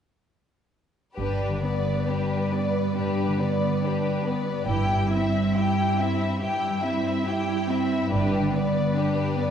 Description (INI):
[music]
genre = classical, slow romantic movement for symphony orchestra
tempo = 70 BPM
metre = 4/4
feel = rubato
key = G major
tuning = A4 = 439 Hz
[part]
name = clear studio violin section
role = second line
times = 1.1-9.5 s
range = E4 to B4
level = -31 LUFS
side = left 3 dB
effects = none
[part]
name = rich studio violin section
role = melody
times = 1.2-9.5 s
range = B4 to G5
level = -29 LUFS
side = left 2 dB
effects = none
[part]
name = rich studio viola section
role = accompaniment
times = 1.2-9.5 s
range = B3 to E4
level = -30 LUFS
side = right 1 dB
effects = none
[part]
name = concert harp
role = arpeggios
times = 1.2-9.5 s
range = G2 to G4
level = -29 LUFS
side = left 2 dB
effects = none
[part]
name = rich studio cello section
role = bass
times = 1.2-9.5 s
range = G2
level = -28 LUFS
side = right 2 dB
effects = none
[part]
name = rich studio double bass section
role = bass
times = 1.2-8.9 s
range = G1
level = -31 LUFS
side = right 3 dB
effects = none
[sound]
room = wet scoring stage reverb, RT60 1.9 s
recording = heard from further back in the room, nothing above 10.9 kHz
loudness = -22 LUFS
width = side -8 dB against mid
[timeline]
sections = 1.2-9.5 A section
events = none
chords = 1.2 G; 4.7 C/G; 8.1 G